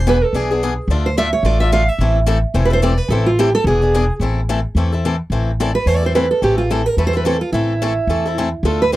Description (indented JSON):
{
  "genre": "acoustic string swing (jazz manouche)",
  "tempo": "216 BPM",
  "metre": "4/4",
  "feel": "swing 56% on 8ths",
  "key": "A minor",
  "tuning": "A4 = 442 Hz",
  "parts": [
    { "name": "picked steel-string acoustic guitar", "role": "melody", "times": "0.0-9.0 s", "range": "E4 to F5", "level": "-18 LUFS", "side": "right 3 dB", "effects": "none" },
    { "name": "upright bass", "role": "bass", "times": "0.0-9.0 s", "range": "E1 to E2", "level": "-18 LUFS", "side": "equal", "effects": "none" },
    { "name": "picked swing-style acoustic guitar", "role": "accompaniment", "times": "0.1-9.0 s", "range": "D3 to A4", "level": "-21 LUFS", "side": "left 4 dB", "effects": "none" }
  ],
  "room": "little or no reverb",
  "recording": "dry, close 1970s-style studio recording",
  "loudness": "-14 LUFS",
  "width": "side -16 dB against mid",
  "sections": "0.0-4.2 A section; 4.2-9.0 A section",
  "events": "steel-string acoustic guitar solo 0.0-4.2, 4.2-9.0",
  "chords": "0.0 E7; 0.9 Dm; 2.0 Am; 3.7 E7; 4.2 Am",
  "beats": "0.06 0.34 0.61 | 0.89 1.17 1.44 1.72 | 2.00 2.27 2.55 2.82 | 3.10 3.38 3.65 3.93 | 4.21 4.49 4.76 5.04 | 5.32 5.59 5.87 6.15 | 6.43 6.71 6.98 7.26 | 7.54 7.82 8.09 8.37 | 8.65 8.93"
}